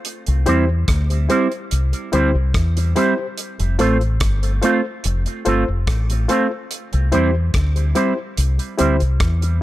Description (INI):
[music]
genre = roots reggae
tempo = 72 BPM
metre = 4/4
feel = straight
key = unclear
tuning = A4 = 440 Hz
[part]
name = damped 70s drum kit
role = drums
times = 0.0-9.6 s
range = hi-hat, kick drum, rim click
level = -23 LUFS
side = equal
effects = tape echo
[part]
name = deep dub fingered electric bass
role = bass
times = 0.3-9.6 s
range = F1 to E2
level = -18 LUFS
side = equal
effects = none
[part]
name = electric guitar with an envelope filter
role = accompaniment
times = 0.5-9.5 s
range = G3 to F4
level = -22 LUFS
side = right 4 dB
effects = analog chorus, tape echo
[part]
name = barky reed electric piano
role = stabs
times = 0.5-9.0 s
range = E4 to C5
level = -23 LUFS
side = left 4 dB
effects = overdrive, fast tremolo
[sound]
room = studio ambience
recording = none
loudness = -16 LUFS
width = side -15 dB against mid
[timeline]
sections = 0.0-9.6 A section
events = none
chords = 0.1 C; 3.4 F; 6.7 C